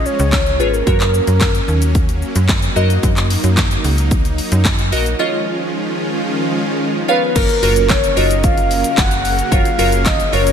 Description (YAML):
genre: dance-pop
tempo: 111 BPM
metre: 4/4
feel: straight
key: F# major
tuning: A4 = 441 Hz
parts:
  - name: soft octave-layered synth lead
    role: melody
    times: 0.0-2.4, 7.1-10.5 s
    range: A#4 to F#5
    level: -18 LUFS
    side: left 1 dB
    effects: chorus, phaser, slapback echo
  - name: supersaw chords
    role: sustained chords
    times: 0.0-10.5 s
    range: C#3 to A#4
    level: -21 LUFS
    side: right 1 dB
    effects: sidechain pumping
  - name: slap-like FM bass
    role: bass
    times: 0.0-10.5 s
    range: F#1 to F#2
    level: -17 LUFS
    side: equal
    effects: sidechain pumping
  - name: pop drum kit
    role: drums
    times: 0.1-10.5 s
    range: crash cymbal, handclaps, hi-hat, kick drum, shaker, snare drum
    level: -17 LUFS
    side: equal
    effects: none
  - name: glassy wavetable pluck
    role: accompaniment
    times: 0.6-10.5 s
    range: E#4 to E#5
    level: -20 LUFS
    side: right 1 dB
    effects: chorus, slapback echo
room: light reverb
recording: none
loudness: -13 LUFS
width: side -8 dB against mid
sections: 0.0-7.4 A section; 7.4-10.5 B section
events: break 5.2-7.4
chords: 0.0 C#; 0.9 F#; 2.8 D#m; 5.2 C#add9; 7.4 F#maj7